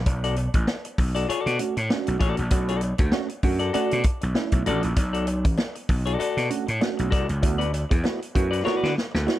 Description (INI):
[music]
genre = funk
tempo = 98 BPM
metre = 4/4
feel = swing 56% on 16ths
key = B minor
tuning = A4 = 441 Hz
[part]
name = gritty slap bass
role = bass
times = 0.0-9.3 s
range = A1 to D3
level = -25 LUFS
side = equal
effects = overdrive
[part]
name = clean electric guitar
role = accompaniment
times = 0.1-9.3 s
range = F#4 to D5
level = -28 LUFS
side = left 6 dB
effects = none
[part]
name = vintage drum kit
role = drums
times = 0.1-9.4 s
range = hi-hat, kick drum, snare drum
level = -25 LUFS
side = equal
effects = none
[part]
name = cowbell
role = percussion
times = 0.1-9.4 s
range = none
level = -38 LUFS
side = left 3 dB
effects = none
[part]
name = reed electric piano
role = stabs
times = 1.6-9.4 s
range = A3 to G#4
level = -28 LUFS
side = right 6 dB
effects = overdrive, phaser
[sound]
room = little or no reverb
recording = none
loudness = -21 LUFS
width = side -14 dB against mid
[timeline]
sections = 0.0-9.4 A section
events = drum fill 8.7-9.4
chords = 0.1 Bm7; 7.4 D6